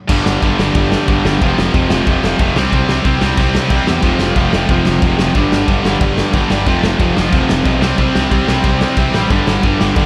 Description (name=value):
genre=punk rock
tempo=182 BPM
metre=4/4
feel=straight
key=unclear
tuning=A4 = 440 Hz
part: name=distorted electric guitar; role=riff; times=0.1-10.1 s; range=F2 to C4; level=-22 LUFS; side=equal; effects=distortion
part: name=distorted electric guitar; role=riff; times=0.1-10.1 s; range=F2 to C4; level=-23 LUFS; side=equal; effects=distortion
part: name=tight distorted guitar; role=riff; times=0.1-10.1 s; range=F2 to C4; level=-22 LUFS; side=equal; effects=distortion
part: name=fuzz picked electric bass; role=bass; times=0.1-10.1 s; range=F1 to E2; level=-22 LUFS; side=equal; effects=overdrive
part: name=raw garage drum kit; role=drums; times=0.1-10.0 s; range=crash cymbal, kick drum, snare drum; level=-18 LUFS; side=equal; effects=none
room=light reverb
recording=none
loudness=-14 LUFS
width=mono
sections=0.1-10.1 A section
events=none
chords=0.1 G5; 1.4 F5; 2.6 C5; 4.0 F5; 5.4 G5; 6.7 F5; 7.8 C5; 9.3 G5